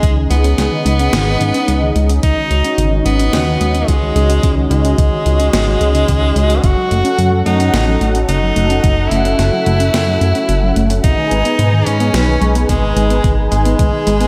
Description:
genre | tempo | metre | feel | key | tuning
synthwave | 109 BPM | 4/4 | straight | unclear | A4 = 442 Hz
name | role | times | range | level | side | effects
bright tenor saxophone | melody | 0.0-14.3 s | G#3 to F#4 | -20 LUFS | equal | delay
warm analog pad | sustained chords | 0.0-14.3 s | C#4 to G#5 | -22 LUFS | equal | chorus, sidechain pumping
soft round pluck | arpeggios | 0.0-14.3 s | B2 to G#4 | -24 LUFS | equal | chorus, delay
chorused synth bass | bass | 0.0-14.3 s | F#1 to G#2 | -17 LUFS | equal | none
clean 12-bit digital drum machine | drums | 0.0-14.3 s | hi-hat, snare drum | -25 LUFS | equal | studio reverb
electronic kick drum | drums | 0.0-13.9 s | none | -17 LUFS | equal | studio reverb
room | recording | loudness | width
moderate lush hall reverb, RT60 1.7 s | dreamy mix soaked in reverb | -14 LUFS | mono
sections
0.0-14.3 A section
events
none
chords
0.0 C#sus2; 6.6 F#m; 11.0 G#m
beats
| 0.03 0.58 1.13 1.68 | 2.23 2.78 3.33 3.88 | 4.43 4.98 5.54 6.08 | 6.64 7.19 7.74 8.29 | 8.84 9.39 9.94 10.49 | 11.04 11.59 12.14 12.69 | 13.24 13.79

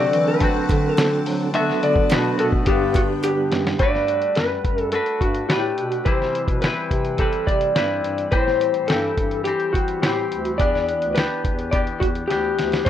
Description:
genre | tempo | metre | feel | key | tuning
indie pop, bedroom pop | 106 BPM | 4/4 | straight | G major | A4 = 439 Hz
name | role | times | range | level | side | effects
electric slide guitar | melody | 0.0-12.9 s | F#4 to E5 | -22 LUFS | left 1 dB | wide subtle chorus, tape echo, plate reverb
mellow tonewheel organ | accompaniment | 0.0-3.8 s | F#3 to A4 | -25 LUFS | right 5 dB | chorus vibrato, stopped rotary speaker, cassette tape, plate reverb
semi-hollow electric guitar | accompaniment | 0.0-12.9 s | G2 to B4 | -26 LUFS | left 3 dB | lush chorus, warbly pitch drift, plate reverb
string machine, full ensemble | sustained chords | 0.0-3.8 s | C4 to D6 | -35 LUFS | equal | phaser, ensemble chorus, plate reverb
mellow bass clarinet | bass | 0.0-12.9 s | D2 to F#3 | -27 LUFS | equal | none
lo-fi sampler-style drum kit | drums | 0.1-12.9 s | hi-hat, kick drum, snare drum | -23 LUFS | equal | vintage 12-bit sampler grit
group handclap | percussion | 0.7-3.4 s | none | -37 LUFS | right 5 dB | none
room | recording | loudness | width
moderate studio reverb, RT60 0.5 s | rough home demo mix | -18 LUFS | side -10 dB against mid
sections
0.0-3.8 A section; 3.8-12.9 B section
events
drum fill 3.2-3.8, 12.3-12.9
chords
0.0 D7; 1.5 Bm7/D; 2.7 Gmaj7; 3.8 Gmaj9; 6.1 Cmaj7; 8.3 Am7; 10.6 Em7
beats
0.41 0.98 | 1.54 2.10 2.67 3.23 | 3.80 4.37 4.93 5.50 | 6.06 6.63 7.19 7.76 | 8.33 8.89 9.46 10.03 | 10.59 11.16 11.73 12.29 | 12.86

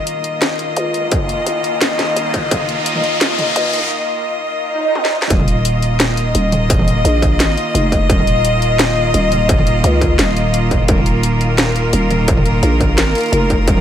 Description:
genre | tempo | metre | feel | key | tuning
half-time drum and bass | 172 BPM | 4/4 | half-time | unclear | A4 = 440 Hz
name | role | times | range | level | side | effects
bright studio cello section | sustained chords | 0.0-13.8 s | Eb3 to Eb5 | -18 LUFS | left 1 dB | sidechain pumping
growling 808-style bass | bass | 0.0-13.8 s | Eb1 to Db2 | -16 LUFS | equal | high-pass filter
riser and swell | sound effects | 0.9-5.3 s | none | -22 LUFS | right 1 dB | none
drum and bass drum kit | drums | 0.1-13.8 s | hi-hat, snare drum, toms | -19 LUFS | equal | none
electronic kick drum | drums | 1.1-2.6, 5.3-13.8 s | none | -16 LUFS | equal | distortion
room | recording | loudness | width
light reverb | high-pass filter | -13 LUFS | side -10 dB against mid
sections
0.0-5.3 A section; 5.3-13.8 B section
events
build-up 0.0-5.3; riser 0.9-3.9; break 3.9-5.3; swell 4.7-5.3; drum fill 5.0-5.3; drop 5.3-13.8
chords
0.0 Eb5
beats
0.07 0.42 0.77 | 1.12 1.47 1.81 2.16 | 2.51 2.86 3.21 3.56 | 3.91 4.26 4.61 4.96 | 5.30 5.65 6.00 6.35 | 6.70 7.05 7.40 7.75 | 8.09 8.44 8.79 9.14 | 9.49 9.84 10.19 10.54 | 10.88 11.23 11.58 11.93 | 12.28 12.63 12.98 13.33 | 13.68

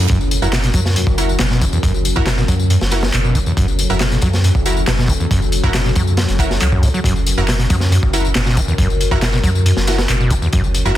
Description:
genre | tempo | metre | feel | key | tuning
breakbeat, breaks | 138 BPM | 4/4 | straight | unclear | A4 = 438 Hz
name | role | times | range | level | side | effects
warbly tape-like pad | sustained chords | 0.0-11.0 s | F#3 to C#5 | -25 LUFS | left 2 dB | chorus, built-in reverb, sidechain pumping
overdriven acid bass | riff | 0.0-10.9 s | E2 to F#3 | -20 LUFS | equal | distortion, ping-pong delay
saturated sub bass | bass | 0.1-11.0 s | F#1 to F#2 | -18 LUFS | equal | none
crunchy breakbeat drum kit | drums | 0.1-10.8 s | hi-hat, kick drum, snare drum | -19 LUFS | equal | none
electronic tambourine and handclaps | drums | 0.1-10.9 s | none | -25 LUFS | left 2 dB | none
orchestra-hit-like synth stab | stabs | 0.4-10.9 s | E4 to A#4 | -25 LUFS | right 2 dB | built-in reverb, ping-pong delay
room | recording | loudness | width
small room ambience | dense, heavily limited modern master | -13 LUFS | side -13 dB against mid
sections
0.0-11.0 A section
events
none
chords
0.0 F#7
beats
| 0.09 0.53 0.96 1.40 | 1.83 2.27 2.70 3.13 | 3.57 4.00 4.44 4.87 | 5.31 5.74 6.18 6.61 | 7.05 7.48 7.92 8.35 | 8.79 9.22 9.66 10.09 | 10.53 10.96

